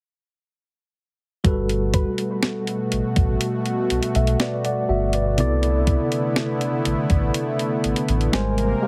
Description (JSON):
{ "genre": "contemporary R&B", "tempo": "61 BPM", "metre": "4/4", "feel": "straight", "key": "G major", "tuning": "A4 = 439 Hz", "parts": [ { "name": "mellow tine electric piano", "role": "accompaniment", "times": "1.4-8.9 s", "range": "C3 to Ab5", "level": "-27 LUFS", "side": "equal", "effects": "none" }, { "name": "warm analog pad", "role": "sustained chords", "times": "1.4-8.9 s", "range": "B2 to Bb4", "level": "-27 LUFS", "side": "equal", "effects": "chorus" }, { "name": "sub bass with octave", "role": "bass", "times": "1.4-8.7 s", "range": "G1 to C2", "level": "-25 LUFS", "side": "equal", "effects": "none" }, { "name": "clean 12-bit digital drum machine", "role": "drums", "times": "1.4-8.8 s", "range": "hi-hat, kick drum, snare drum", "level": "-25 LUFS", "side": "equal", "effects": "none" }, { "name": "soft round pluck", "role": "texture", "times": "1.9-5.8 s", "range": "F#4 to B4", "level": "-35 LUFS", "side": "equal", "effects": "chorus, digital delay" } ], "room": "light reverb", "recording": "heavily compressed radio sound, multiband compression", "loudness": "-22 LUFS", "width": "mono", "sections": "1.4-8.9 A section", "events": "tine electric piano fill 7.8-8.9", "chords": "1.4 Gmaj9; 5.4 Cmaj13; 8.3 Abmaj9" }